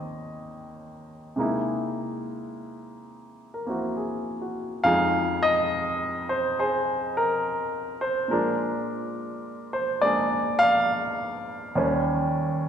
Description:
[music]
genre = solo jazz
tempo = 69 BPM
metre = 4/4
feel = swing 66% on 8ths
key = unclear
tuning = A4 = 440 Hz
[part]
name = warm grand piano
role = solo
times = 0.0-12.7 s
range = Eb2 to F5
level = -24 LUFS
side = equal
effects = none
[sound]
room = wet concert hall reverb, RT60 2.1 s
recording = recorded in a church or concert hall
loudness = -23 LUFS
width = side -8 dB against mid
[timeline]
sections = 0.0-12.7 A section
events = none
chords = 0.0 Eb7; 1.4 C7alt; 4.8 Fm7; 8.3 Bb7; 11.8 Eb7

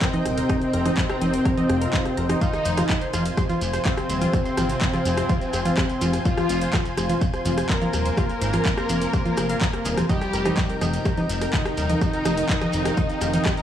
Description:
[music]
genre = melodic techno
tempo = 125 BPM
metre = 4/4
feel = straight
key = F minor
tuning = A4 = 439 Hz
[part]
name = analog synth brass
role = melody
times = 0.0-13.6 s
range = C3 to Bb4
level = -28 LUFS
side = equal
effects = chorus, tape echo
[part]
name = warm symphonic violin section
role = second line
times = 0.0-13.6 s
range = C4 to Bb4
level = -32 LUFS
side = left 1 dB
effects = sidechain pumping, tape echo
[part]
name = lush unison pad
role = sustained chords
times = 0.0-13.6 s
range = Eb4 to Ab5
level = -33 LUFS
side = equal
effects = chorus, sidechain pumping
[part]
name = tight sequenced synth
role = arpeggios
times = 0.0-13.6 s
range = Eb4 to F6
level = -31 LUFS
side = right 1 dB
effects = chorus, sidechain pumping, tape echo
[part]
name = analog drone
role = drone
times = 0.0-13.6 s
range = F2 to C3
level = -34 LUFS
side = left 1 dB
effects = none
[part]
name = electronic kick drum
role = drums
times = 0.0-13.6 s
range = none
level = -24 LUFS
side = equal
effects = overdrive
[part]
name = house drum kit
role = drums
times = 0.0-13.6 s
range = congas, handclaps, hi-hat, rim click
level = -27 LUFS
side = equal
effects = overdrive
[part]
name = warbly tape-like pad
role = texture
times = 0.0-13.6 s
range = Eb4 to Ab5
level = -35 LUFS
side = equal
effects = chorus, built-in reverb, phaser, sidechain pumping
[part]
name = fat analog bass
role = bass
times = 0.3-13.4 s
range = Eb1 to Ab1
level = -26 LUFS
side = left 1 dB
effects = sidechain pumping
[part]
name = swell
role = sound effects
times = 1.7-2.4 s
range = none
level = -35 LUFS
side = left 3 dB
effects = none
[part]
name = shekere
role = percussion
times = 2.4-13.6 s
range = none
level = -37 LUFS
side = right 3 dB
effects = none
[sound]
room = little or no reverb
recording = dry, gritty hardware recording, studio ambience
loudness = -20 LUFS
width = side -10 dB against mid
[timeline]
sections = 0.0-13.6 A section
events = none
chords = 0.0 Eb; 2.4 Fm; 10.1 Eb

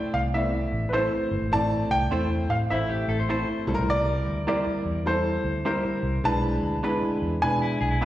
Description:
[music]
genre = soul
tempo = 102 BPM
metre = 4/4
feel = swing 65% on 8ths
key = unclear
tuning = A4 = 440 Hz
[part]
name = clear grand piano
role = melody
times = 0.0-8.1 s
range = B4 to A5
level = -28 LUFS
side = right 1 dB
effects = slapback echo
[part]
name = clear upright piano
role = accompaniment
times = 0.0-8.1 s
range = G3 to D5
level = -27 LUFS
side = equal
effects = slapback echo
[part]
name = vintage muted fingered electric bass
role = bass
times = 0.1-8.1 s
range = G1 to B2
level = -28 LUFS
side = equal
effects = none
[part]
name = semi-hollow electric guitar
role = stabs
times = 0.9-8.1 s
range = Bb3 to C5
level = -35 LUFS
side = right 5 dB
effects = slapback echo
[part]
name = electric guitar at the edge of break-up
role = riff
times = 2.7-3.7, 7.6-8.1 s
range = E4 to C5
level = -32 LUFS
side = left 6 dB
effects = slapback echo
[sound]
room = light reverb, small room ambience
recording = live gig heard through the venue's PA, recital hall reverb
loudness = -23 LUFS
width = side -14 dB against mid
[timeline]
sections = 0.0-8.1 A section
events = none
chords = 0.0 Am; 3.6 C7; 6.2 E7/B

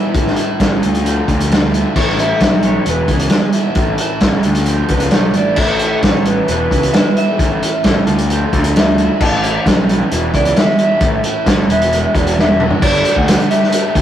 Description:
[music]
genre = indie rock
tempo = 132 BPM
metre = 4/4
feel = straight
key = A major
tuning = A4 = 436 Hz
[part]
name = electric guitar through a small old amp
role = melody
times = 0.0-14.0 s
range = E4 to A5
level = -18 LUFS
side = equal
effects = none
[part]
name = overdriven electric guitar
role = riff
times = 0.0-14.0 s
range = A2 to G4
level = -21 LUFS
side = right 2 dB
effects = none
[part]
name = raw garage guitar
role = riff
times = 0.0-14.0 s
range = A2 to G4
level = -24 LUFS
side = left 5 dB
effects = overdrive
[part]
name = fuzz picked electric bass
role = bass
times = 0.1-14.0 s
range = E1 to A2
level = -18 LUFS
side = equal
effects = overdrive
[part]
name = vintage drum kit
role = drums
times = 0.1-14.0 s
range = crash cymbal, hi-hat, kick drum, snare drum, toms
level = -14 LUFS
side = equal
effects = none
[part]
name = airy breathy pad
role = sustained chords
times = 5.6-14.0 s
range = E4 to A5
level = -31 LUFS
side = left 1 dB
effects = none
[part]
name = soft synth bell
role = second line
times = 6.9-8.0 s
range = E5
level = -22 LUFS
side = equal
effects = chorus, phaser
[sound]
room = moderate stone room reverb, RT60 1.0 s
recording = rough rehearsal-room recording, warm saturation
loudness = -11 LUFS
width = side -10 dB against mid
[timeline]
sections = 0.0-12.8 A section; 12.8-14.0 B section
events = clean electric guitar solo 0.0-12.8; drum fill 12.4-12.8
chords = 0.1 A; 0.8 Dmadd9; 2.0 A; 2.9 E; 3.8 A; 4.5 Dmadd9; 5.6 A; 6.5 E; 7.4 A; 8.1 Dmadd9; 9.2 A; 10.1 E; 11.0 A; 11.7 Eadd9; 12.8 Gsus2

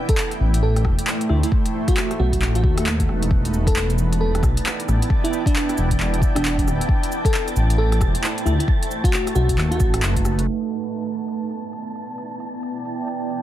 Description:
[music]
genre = future garage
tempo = 134 BPM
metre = 4/4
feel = swing 61% on 16ths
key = E minor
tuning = A4 = 440 Hz
[part]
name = granular cloud pad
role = sustained chords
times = 0.0-13.4 s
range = A3 to G5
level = -26 LUFS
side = right 3 dB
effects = built-in reverb, sidechain pumping
[part]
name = bell-like FM electric piano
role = melody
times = 0.1-10.0 s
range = D4 to A4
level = -27 LUFS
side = equal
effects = chorus, analog delay
[part]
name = deep house drum kit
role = drums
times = 0.1-13.4 s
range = cabasa, handclaps, hi-hat, rim click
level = -27 LUFS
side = equal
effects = small room ambience
[part]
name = electronic kick drum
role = drums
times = 0.1-10.2 s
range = none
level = -20 LUFS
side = equal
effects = small room ambience
[part]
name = dark detuned saw bass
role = bass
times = 0.4-10.5 s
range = D1 to D#2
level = -20 LUFS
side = equal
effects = sidechain pumping
[part]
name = wind-like tuned noise texture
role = texture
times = 4.0-13.4 s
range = A5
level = -34 LUFS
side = equal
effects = built-in reverb
[sound]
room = digital ambience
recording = heavily compressed radio sound, low-pass filter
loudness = -18 LUFS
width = side -13 dB against mid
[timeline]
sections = 0.0-10.5 A section; 10.5-13.4 B section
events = filter sweep on ambient pad 10.5-13.4; filter sweep 10.5-13.4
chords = 0.0 Am7; 1.5 B7; 3.3 Em7; 6.9 Am7; 8.7 B7; 10.5 Em7

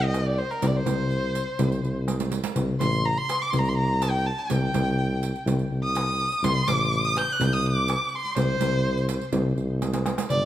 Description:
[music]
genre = Arabic maqam ensemble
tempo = 124 BPM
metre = 4/4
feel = straight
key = unclear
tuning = A4 = 440 Hz
[part]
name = warm violin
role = melody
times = 0.0-10.5 s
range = Bb4 to G6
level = -26 LUFS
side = equal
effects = tape echo
[part]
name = mellow tuba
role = bass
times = 0.0-10.5 s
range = G1 to C2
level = -26 LUFS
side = equal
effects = none
[part]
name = darbuka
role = percussion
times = 0.0-10.4 s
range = none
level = -29 LUFS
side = left 2 dB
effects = none
[part]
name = riq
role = percussion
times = 0.1-10.4 s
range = none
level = -34 LUFS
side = right 9 dB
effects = none
[sound]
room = light reverb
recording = none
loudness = -22 LUFS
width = side -12 dB against mid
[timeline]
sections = 0.0-10.3 A section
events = drum fill 2.1-2.6, 9.8-10.3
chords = none

